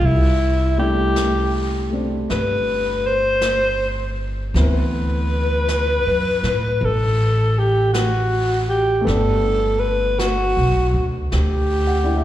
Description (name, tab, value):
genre	jazz ballad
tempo	53 BPM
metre	4/4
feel	swing 66% on 8ths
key	G major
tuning	A4 = 440 Hz
part	breathy alto saxophone	melody	0.0-12.2 s	E4 to C5	-20 LUFS	equal	slapback echo
part	warm grand piano	accompaniment	0.0-12.2 s	E3 to F#5	-26 LUFS	left 1 dB	slapback echo
part	upright bass	bass	0.0-12.2 s	G1 to A2	-20 LUFS	equal	none
part	jazz brush drum kit	drums	0.0-12.2 s	brushed snare drum, hi-hat, snare drum	-31 LUFS	left 1 dB	slapback echo
room	small room ambience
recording	live gig heard through the venue's PA, recital hall reverb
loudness	-17 LUFS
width	side -13 dB against mid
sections	0.0-12.2 A section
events	none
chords	0.0 C69; 4.6 D7sus2; 9.1 Gmaj9